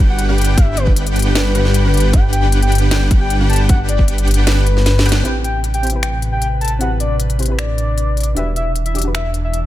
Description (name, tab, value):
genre	future bass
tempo	154 BPM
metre	4/4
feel	half-time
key	unclear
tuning	A4 = 441 Hz
part	airy breathy pad	sustained chords	0.0-9.7 s	C3 to B4	-28 LUFS	left 2 dB	chorus, sidechain pumping
part	dense compressed supersaw	riff	0.0-5.2 s	D4 to G5	-22 LUFS	equal	cassette tape, sidechain pumping, low-pass filter
part	wide detuned saw bass	bass	0.0-9.7 s	E1 to A1	-16 LUFS	equal	chorus, sidechain pumping
part	soft octave-layered synth lead	melody	0.1-9.6 s	B4 to A5	-23 LUFS	left 2 dB	chorus, sidechain pumping, ping-pong delay
part	trap drum kit	drums	0.2-9.6 s	finger snaps, hi-hat, snare drum	-22 LUFS	left 1 dB	none
part	electronic kick drum	drums	0.6-4.1 s	none	-12 LUFS	equal	none
part	soft round pluck	accompaniment	5.2-9.7 s	C4 to D5	-27 LUFS	left 1 dB	chorus, sidechain pumping, digital delay
room	digital ambience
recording	none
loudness	-13 LUFS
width	side -14 dB against mid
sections	0.0-5.3 A section; 5.3-9.7 B section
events	drop 0.0-5.3; kick drops out 4.5-5.3; drum fill 4.9-5.3; band accent 5.1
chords	0.0 Gmaj7; 5.3 Am9; 8.4 Em7